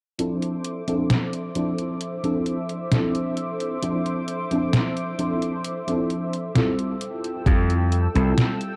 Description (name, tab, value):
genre	vaporwave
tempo	66 BPM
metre	4/4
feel	straight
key	unclear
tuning	A4 = 440 Hz
part	mellow FM electric piano	accompaniment	0.2-8.8 s	F3 to A4	-27 LUFS	equal	ensemble chorus, analog delay
part	lush unison pad	sustained chords	0.2-8.8 s	A4 to E6	-34 LUFS	equal	chorus, vintage 12-bit sampler grit
part	detuned 8-bit digital drum machine	drums	0.2-8.8 s	hi-hat, snare drum	-26 LUFS	equal	overdrive
part	gritty slap bass	bass	7.5-8.3 s	C2 to F2	-22 LUFS	equal	overdrive
part	electronic kick drum	drums	7.5-7.6 s	none	-21 LUFS	equal	overdrive
room	light reverb, digital ambience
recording	dark, warm production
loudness	-24 LUFS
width	mono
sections	0.2-8.8 A section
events	none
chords	0.2 Dm9; 7.0 Fmaj9